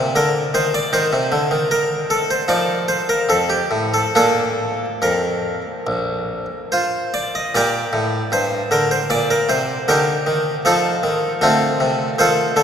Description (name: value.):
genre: classical, baroque-style suite movement for harpsichord.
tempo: 68-79 BPM.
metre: 4/4.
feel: rubato.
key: Bb major.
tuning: A4 = 440 Hz.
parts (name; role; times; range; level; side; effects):
harpsichord; solo; 0.0-12.6 s; Bb1 to Eb5; -16 LUFS; equal; none.
room: wet cathedral reverb, RT60 7.0 s.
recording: recorded in a church or concert hall.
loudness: -16 LUFS.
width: side -8 dB against mid.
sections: 0.0-7.5 A section; 7.5-12.6 A section.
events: none.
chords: 0.0 Bb; 0.9 Cm13; 2.5 F7; 4.1 Bb; 7.5 Gm; 9.1 Cm7/Bb; 10.6 F7.